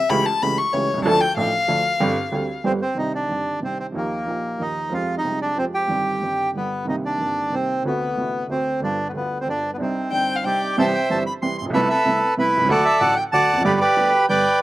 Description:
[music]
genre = tango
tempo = 186 BPM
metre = 3/4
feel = rubato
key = C minor, C major from 10.8 s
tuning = A4 = 440 Hz
[part]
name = warm violin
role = second line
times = 0.0-2.6, 10.1-10.8 s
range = C#5 to C#6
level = -21 LUFS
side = left 4 dB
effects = slapback echo
[part]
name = clear upright piano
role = accompaniment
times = 0.1-14.4 s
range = G1 to A4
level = -24 LUFS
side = right 2 dB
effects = none
[part]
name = bandoneon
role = melody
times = 2.7-14.6 s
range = Bb3 to C6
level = -20 LUFS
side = right 1 dB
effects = slapback echo
[sound]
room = little or no reverb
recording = recorded outdoors, with no room sound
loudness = -19 LUFS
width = side -16 dB against mid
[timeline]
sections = 0.0-3.0 A section; 3.0-10.8 B section; 10.8-14.6 A section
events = violin solo 0.0-3.0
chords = 0.1 A7/C#; 1.0 Dm; 2.0 Gsus4; 2.6 G; 3.0 Cmadd9; 3.9 Ebadd9; 4.9 Fmadd9; 5.9 Cm/G; 6.5 G; 6.9 Cm7; 7.8 D7; 8.8 G7; 9.8 Cmadd9; 10.8 C; 11.7 Amadd9/C; 12.7 D; 13.6 G

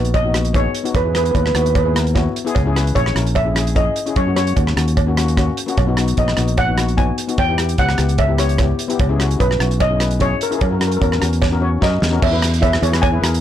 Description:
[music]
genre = calypso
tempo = 149 BPM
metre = 4/4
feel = straight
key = unclear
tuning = A4 = 440 Hz
[part]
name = steel pan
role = melody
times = 0.0-13.4 s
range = A#4 to G#5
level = -21 LUFS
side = equal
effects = plate reverb
[part]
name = steel pan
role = accompaniment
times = 0.0-13.4 s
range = A#3 to C#5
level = -23 LUFS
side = left 6 dB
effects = none
[part]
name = fingered electric bass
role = bass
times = 0.0-13.4 s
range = A#1 to F#2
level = -18 LUFS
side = equal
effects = none
[part]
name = warm soul drum kit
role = drums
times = 0.0-13.4 s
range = crash cymbal, hi-hat, kick drum, rim click, snare drum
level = -20 LUFS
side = equal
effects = soft clipping on snare
[part]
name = cowbell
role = percussion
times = 0.1-13.1 s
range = none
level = -26 LUFS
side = right 10 dB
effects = none
[sound]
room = light reverb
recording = blown-out, overdriven recording, overdrive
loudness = -14 LUFS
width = side -11 dB against mid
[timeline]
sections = 0.0-12.2 A section; 12.2-13.4 B section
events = drum fill 11.4-12.2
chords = 0.0 Bmaj7; 0.9 Emaj7; 2.6 C#madd9; 4.2 F#; 5.8 Bmaj7; 7.4 Em6; 9.0 C#m7; 10.6 F#7; 12.2 E

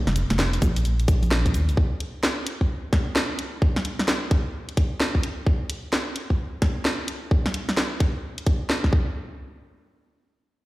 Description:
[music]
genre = UK garage, two-step garage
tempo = 130 BPM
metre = 4/4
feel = swing 63% on 16ths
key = unclear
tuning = A4 = 437 Hz
[part]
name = organ-like FM bass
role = bass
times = 0.1-1.8 s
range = F1 to Eb2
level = -22 LUFS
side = equal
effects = sidechain pumping
[part]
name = garage drum kit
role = drums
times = 0.1-8.9 s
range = cabasa, congas, hi-hat, snare drum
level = -26 LUFS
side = equal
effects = none
[part]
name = electronic kick drum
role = drums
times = 0.6-9.0 s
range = none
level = -21 LUFS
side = equal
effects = none
[sound]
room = moderate lush hall reverb, RT60 1.9 s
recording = played on a big sound system in a bare room, stone room reverb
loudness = -21 LUFS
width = side -18 dB against mid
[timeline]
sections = 0.0-9.2 A section; 9.2-10.7 B section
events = none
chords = none

